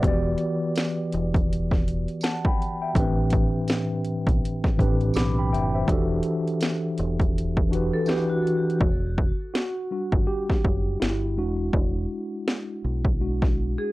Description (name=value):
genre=lo-fi hip hop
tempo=82 BPM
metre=4/4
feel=swing 61% on 16ths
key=E minor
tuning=A4 = 439 Hz
part: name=mellow tine electric piano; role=accompaniment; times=0.0-13.9 s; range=A2 to D6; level=-25 LUFS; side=equal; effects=medium stereo tremolo, low-pass filter
part: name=deep dub fingered electric bass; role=bass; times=0.0-13.8 s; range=E1 to B1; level=-27 LUFS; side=equal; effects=none
part: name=techno drum kit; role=drums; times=0.0-13.6 s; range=hi-hat, kick drum, snare drum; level=-24 LUFS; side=equal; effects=none
part: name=tambourine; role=percussion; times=0.8-8.3 s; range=none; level=-43 LUFS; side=right 4 dB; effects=none
part: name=vibraphone with medium hard mallets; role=second line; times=7.9-8.8, 13.8-13.9 s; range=F#4 to A4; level=-30 LUFS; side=left 1 dB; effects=low-pass filter, tape echo
room=light reverb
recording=worn, warbling old tape, cassette tape, warbly pitch drift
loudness=-22 LUFS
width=side -19 dB against mid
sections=0.0-8.8 A section; 8.8-13.9 B section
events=hi-hats muted 8.8-13.9; tine electric piano solo 8.8-13.9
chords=0.0 Em9; 3.0 Am11; 5.9 Em11; 8.8 Em9; 11.4 E7